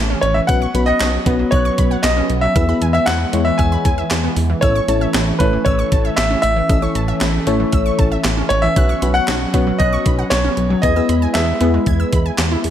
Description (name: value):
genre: synth-pop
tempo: 116 BPM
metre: 4/4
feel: straight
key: E major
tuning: A4 = 440 Hz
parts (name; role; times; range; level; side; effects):
- clear baby grand piano; melody; 0.0-12.1 s; B4 to G#5; -20 LUFS; equal; none
- chorused pulse-width pad; sustained chords; 0.0-12.7 s; E3 to E4; -23 LUFS; equal; none
- chorused synth bass; bass; 0.0-12.7 s; A1 to E2; -19 LUFS; equal; none
- wide unison pluck; arpeggios; 0.1-12.6 s; E3 to G#6; -25 LUFS; right 2 dB; digital delay
- gated 80s digital drum machine; drums; 0.2-12.7 s; handclaps, hi-hat, kick drum, snare drum; -19 LUFS; equal; gated reverb, gated reverb snare
- FM electric piano; accompaniment; 0.5-12.3 s; B3 to D#5; -22 LUFS; left 4 dB; chorus
room: light reverb, digital ambience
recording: none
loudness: -14 LUFS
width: side -10 dB against mid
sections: 0.0-12.7 A section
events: none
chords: 0.5 Bsus2; 2.6 E; 4.6 A; 8.8 Bsus2; 10.8 E